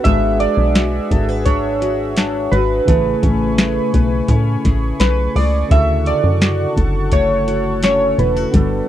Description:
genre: indie pop, bedroom pop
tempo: 85 BPM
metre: 4/4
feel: straight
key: unclear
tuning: A4 = 445 Hz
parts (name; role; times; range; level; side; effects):
- warm analog keys; melody; 0.0-8.9 s; B4 to E5; -19 LUFS; right 2 dB; wide subtle chorus, tape echo
- barky tine electric piano; accompaniment; 0.0-8.9 s; C#3 to B4; -26 LUFS; right 4 dB; overdrive, cassette tape
- fingerpicked steel-string acoustic guitar; accompaniment; 0.0-8.9 s; D3 to B4; -22 LUFS; left 4 dB; wide subtle chorus, warbly pitch drift
- warm analog pad; sustained chords; 0.0-8.9 s; A3 to C#6; -26 LUFS; left 2 dB; chorus
- plucky analog bass; bass; 0.1-8.8 s; E1 to A2; -18 LUFS; equal; none
- soft vintage rhythm box; drums; 0.1-8.7 s; hi-hat, kick drum, snare drum; -16 LUFS; equal; none
room: little or no reverb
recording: dry, close 1970s-style studio recording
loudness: -13 LUFS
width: side -12 dB against mid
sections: 0.0-8.9 A section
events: none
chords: 0.0 E9/G#; 2.9 Amaj9; 5.7 Dmaj7

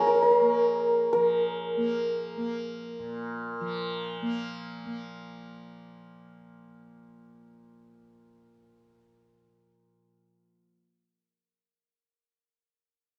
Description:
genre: indian classical, Hindustani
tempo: free time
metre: none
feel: none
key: Bb raga bhairavi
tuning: A4 = 440 Hz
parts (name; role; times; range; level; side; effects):
- santur; melody; 0.0-4.1 s; Ab4 to F5; -27 LUFS; equal; slapback echo
- tanpura; drone; 0.0-10.8 s; Bb2 to Bb3; -39 LUFS; equal; none
room: little or no reverb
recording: recorded outdoors, with no room sound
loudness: -28 LUFS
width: mono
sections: 0.0-1.1 A section; 1.1-5.3 B section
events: none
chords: none

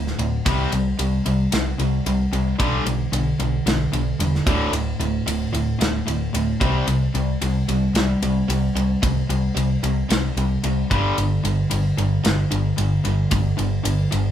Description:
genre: hard rock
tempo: 112 BPM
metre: 4/4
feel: straight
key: unclear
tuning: A4 = 440 Hz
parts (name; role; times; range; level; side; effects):
- overdriven semi-hollow guitar; riff; 0.0-14.3 s; D2 to C4; -24 LUFS; left 5 dB; none
- tight distorted guitar; riff; 0.0-14.3 s; D2 to C4; -26 LUFS; right 6 dB; distortion
- hollow-body short-scale picked electric bass; bass; 0.0-14.3 s; D1 to C2; -23 LUFS; equal; none
- tight metal drum kit; drums; 0.1-14.2 s; kick drum, ride cymbal, snare drum; -26 LUFS; equal; none
room: light reverb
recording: band playing live in one room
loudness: -19 LUFS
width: side -10 dB against mid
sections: 0.0-14.3 A section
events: none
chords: 0.5 C5; 2.6 G/B; 4.5 D5; 6.6 C5; 10.9 G5

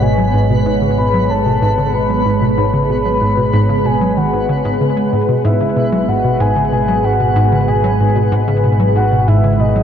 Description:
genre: ambient, sequencer-driven space music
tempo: 94 BPM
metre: 4/4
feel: straight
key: G# minor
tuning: A4 = 442 Hz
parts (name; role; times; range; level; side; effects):
- soft octave-layered synth lead; melody; 0.0-9.8 s; D#5 to B5; -19 LUFS; left 2 dB; chorus, tremolo, ping-pong delay
- sweeping resonant pad; sustained chords; 0.0-9.8 s; G#3 to C#5; -18 LUFS; right 2 dB; chorus
- hollow square pluck; riff; 0.0-9.8 s; G#2 to G#3; -17 LUFS; equal; chorus, ping-pong delay
- fat analog bass; bass; 0.0-9.8 s; G#1; -18 LUFS; equal; none
- twinkling granular texture; texture; 0.0-9.8 s; B3 to B4; -24 LUFS; right 1 dB; built-in reverb
room: moderate huge ambient reverb, RT60 8.2 s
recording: cassette tape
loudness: -12 LUFS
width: side -8 dB against mid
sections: 0.0-9.8 A section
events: none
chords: 0.0 G#m7

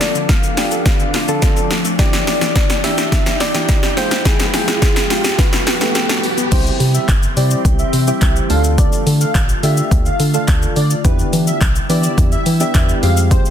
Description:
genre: dance-pop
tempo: 106 BPM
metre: 4/4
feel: straight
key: unclear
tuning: A4 = 440 Hz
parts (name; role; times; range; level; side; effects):
- soft struck synth lead; melody; 0.0-6.2 s; G4 to F5; -24 LUFS; left 2 dB; chorus, low-pass filter, tape echo
- soft electric-piano-like synth keys; accompaniment; 0.0-13.5 s; G3 to G5; -23 LUFS; right 2 dB; chorus, sidechain pumping, low-pass filter
- glassy FM pad; sustained chords; 0.0-13.5 s; D3 to G5; -25 LUFS; left 2 dB; ensemble chorus, built-in reverb, sidechain pumping, low-pass filter
- punchy analog drum machine; drums; 0.0-13.5 s; crash cymbal, handclaps, hi-hat, kick drum, shaker, snare drum; -15 LUFS; equal; none
- riser; sound effects; 0.0-6.5 s; none; -25 LUFS; right 1 dB; none
- wide unison pluck; arpeggios; 0.2-6.5 s; D3 to A4; -28 LUFS; left 3 dB; none
- airy dreamy lead; melody; 6.5-13.4 s; B4 to F5; -24 LUFS; equal; chorus, sidechain pumping, tape echo
- organ-like FM bass; bass; 6.5-13.4 s; G1 to E3; -16 LUFS; equal; sidechain pumping
room: digital ambience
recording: dense, heavily limited modern master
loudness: -12 LUFS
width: side -9 dB against mid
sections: 0.0-6.5 A section; 6.5-13.5 B section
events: build-up 0.0-6.5; drum fill 0.0-6.5; riser 0.0-6.5; drop 6.5-13.5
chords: 0.0 Dm; 2.0 Em7; 4.0 Fmadd9; 5.4 Gadd9; 6.5 C; 8.5 Dm; 11.0 Em7

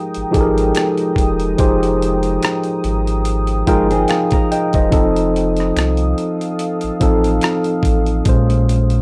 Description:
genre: lo-fi hip hop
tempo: 72 BPM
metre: 4/4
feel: swing 57% on 16ths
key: F minor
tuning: A4 = 440 Hz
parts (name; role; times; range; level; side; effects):
- mellow tine electric piano; accompaniment; 0.0-9.0 s; Bb2 to G5; -19 LUFS; equal; none
- deep dark ambient pad; sustained chords; 0.0-9.0 s; Ab3 to Eb6; -29 LUFS; equal; chorus, built-in reverb
- dusty soul sampler-style drum kit; drums; 0.1-9.0 s; hi-hat, kick drum, rim click; -21 LUFS; equal; none
- warm sub bass; bass; 0.2-9.0 s; E1 to C2; -22 LUFS; equal; none
- finger snaps; percussion; 0.8-7.6 s; none; -36 LUFS; equal; none
- nylon-string guitar; second line; 3.7-4.9 s; Ab3 to Bb4; -26 LUFS; equal; tape echo
room: little or no reverb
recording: dry, gritty hardware recording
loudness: -16 LUFS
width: mono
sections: 0.0-9.0 A section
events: none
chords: 0.0 Fm11; 4.9 F7; 8.3 Bbm9

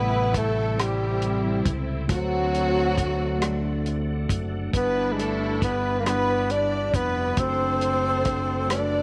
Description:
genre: slow gospel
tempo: 46 BPM (dotted quarters)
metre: 6/8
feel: straight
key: G major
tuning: A4 = 440 Hz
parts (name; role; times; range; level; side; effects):
- breathy tenor saxophone; melody; 0.0-9.0 s; F#3 to D4; -28 LUFS; equal; none
- warm studio string section; melody; 0.0-9.0 s; A3 to D5; -32 LUFS; equal; none
- mellow tine electric piano; accompaniment; 0.0-9.0 s; G2 to D5; -34 LUFS; equal; none
- bright tonewheel organ; sustained chords; 0.0-9.0 s; G4 to B5; -44 LUFS; equal; none
- dark French horn section; sustained chords; 0.0-9.0 s; C3 to E4; -40 LUFS; equal; none
- fingered electric bass; bass; 0.0-9.0 s; F1 to D2; -31 LUFS; equal; none
- warm soul drum kit; drums; 0.3-8.9 s; hi-hat, kick drum, rim click; -30 LUFS; equal; none
room: light reverb, small room ambience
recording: none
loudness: -24 LUFS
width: mono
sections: 0.0-9.0 A section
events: none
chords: 0.0 Am7; 2.1 D7; 4.7 G6; 7.4 D7/F#

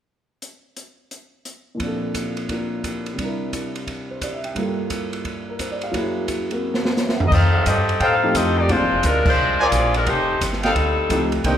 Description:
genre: jazz, big band swing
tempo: 174 BPM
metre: 4/4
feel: swing 65% on 8ths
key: F mixolydian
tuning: A4 = 440 Hz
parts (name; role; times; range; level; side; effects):
- open jazz drum kit; drums; 0.4-11.5 s; crash cymbal, hi-hat, kick drum, ride cymbal, snare drum, toms; -26 LUFS; right 1 dB; none
- warm grand piano; accompaniment; 1.7-8.9, 11.1-11.6 s; Gb2 to Bb5; -24 LUFS; equal; none
- clear saxophone section; melody; 7.3-11.3 s; G3 to F5; -19 LUFS; left 2 dB; none
- warm trumpet section; stabs; 7.3-11.6 s; A4 to Ab5; -24 LUFS; right 1 dB; none
- upright bass; bass; 7.3-11.6 s; F1 to A2; -22 LUFS; equal; none
room: wet recital hall reverb, RT60 1.3 s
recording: recorded in a church or concert hall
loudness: -18 LUFS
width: side -10 dB against mid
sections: 0.4-1.8 A section; 1.8-7.3 B section; 7.3-11.6 C section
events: drum fill 6.6-7.3; band accent 9.2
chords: 0.4 N.C.; 1.8 Bbmaj7; 3.2 C7; 4.6 Gm7; 5.9 Gb7; 7.3 F9; 8.7 Bb9; 10.1 F9

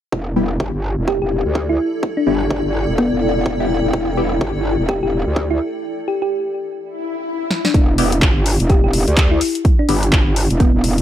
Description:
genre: bass house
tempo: 126 BPM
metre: 4/4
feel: swing 60% on 16ths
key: E minor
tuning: A4 = 441 Hz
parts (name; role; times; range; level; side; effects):
- metallic wobble bass; bass; 0.1-11.0 s; E1 to D2; -19 LUFS; equal; chorus, overdrive, sidechain pumping
- electronic kick drum; drums; 0.1-10.7 s; none; -16 LUFS; equal; high-pass filter on kick, small room ambience
- granular cloud pad; texture; 1.0-5.8 s; E4 to G5; -24 LUFS; left 2 dB; built-in reverb, sidechain pumping
- band-passed chord stab; stabs; 0.4-4.3, 8.0-10.0 s; G3 to G4; -22 LUFS; left 2 dB; phaser, sidechain pumping, ping-pong delay
- thumb-piano-like synth pluck; melody; 1.1-11.0 s; B3 to G4; -21 LUFS; left 1 dB; chorus, ping-pong delay
- swell; sound effects; 6.9-7.7 s; none; -25 LUFS; left 4 dB; none
- house drum kit; drums; 7.5-11.0 s; handclaps, hi-hat, snare drum; -21 LUFS; equal; small room ambience
room: light reverb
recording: none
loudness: -15 LUFS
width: side -11 dB against mid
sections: 0.1-7.7 A section; 7.7-11.0 B section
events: break 5.8-7.7; swell 6.9-7.7; drum fill 7.5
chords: 0.1 Em

